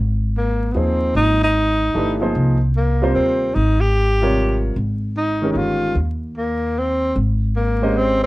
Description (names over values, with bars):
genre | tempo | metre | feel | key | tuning
modal jazz | 150 BPM | 3/4 | swing 67% on 8ths | Ab major | A4 = 444 Hz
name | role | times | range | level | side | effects
upright bass | bass | 0.0-8.3 s | G1 to Eb2 | -20 LUFS | equal | none
breathy tenor saxophone | melody | 0.4-8.3 s | Bb3 to G4 | -19 LUFS | equal | none
warm baby grand piano | accompaniment | 0.7-8.3 s | C3 to Eb5 | -21 LUFS | right 1 dB | none
room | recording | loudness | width
light reverb | dark, warm production, vinyl crackle | -16 LUFS | side -19 dB against mid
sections
0.0-8.3 A section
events
none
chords
0.0 Abmaj9